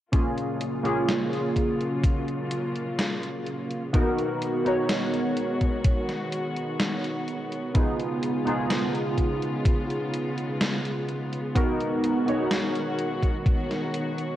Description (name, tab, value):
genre	vaporwave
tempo	63 BPM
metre	4/4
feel	straight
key	G# dorian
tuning	A4 = 440 Hz
part	warbly lo-fi synth keys	accompaniment	0.1-14.4 s	A#3 to C#5	-27 LUFS	right 1 dB	lush chorus, analog delay
part	dark chamber string section	sustained chords	0.1-14.4 s	C#3 to F#4	-32 LUFS	equal	low-pass filter
part	electronic kick drum	drums	0.1-13.7 s	none	-23 LUFS	equal	none
part	gated 80s digital drum machine	drums	0.1-14.4 s	hi-hat, snare drum	-30 LUFS	left 1 dB	gated reverb, gated reverb snare
room	moderate concert hall reverb, RT60 2.2 s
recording	worn, warbling old tape, cassette tape, warbly pitch drift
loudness	-24 LUFS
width	side -13 dB against mid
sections	0.1-14.4 A section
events	filter sweep on string section 0.1-14.4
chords	0.1 F#maj7; 3.9 G#m7; 7.8 C#7; 11.6 G#m7